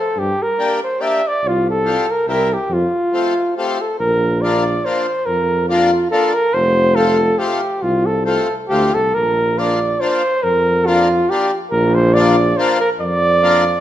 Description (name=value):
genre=alpine folk, alpine dance band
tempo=140 BPM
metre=3/4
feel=swing 55% on 8ths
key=F major, Bb major from 4.0 s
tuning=A4 = 439 Hz
part: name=mellow flugelhorn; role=melody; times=0.0-13.8 s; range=F4 to E5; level=-16 LUFS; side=right 1 dB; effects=none
part: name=warm tuba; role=bass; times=0.2-13.8 s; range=F1 to G2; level=-19 LUFS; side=equal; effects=none
part: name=accordion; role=accompaniment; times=0.6-13.6 s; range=G3 to G4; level=-21 LUFS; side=left 4 dB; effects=none
room=moderate recital hall reverb, RT60 1.5 s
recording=minimal, uncompressed stereo recording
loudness=-14 LUFS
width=side -12 dB against mid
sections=0.0-4.0 A section; 4.0-13.8 B section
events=none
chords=0.2 Gm; 1.4 Csus4; 2.3 C7; 2.7 F; 4.0 Bb; 6.5 F; 9.1 Bb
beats=| 0.16 0.58 1.01 | 1.43 1.85 2.27 | 2.69 3.12 3.56 | 3.99 4.43 4.85 | 5.28 5.70 6.12 | 6.54 6.97 7.40 | 7.83 8.26 8.70 | 9.14 9.58 10.01 | 10.44 10.87 11.30 | 11.72 12.14 12.57 | 13.00 13.43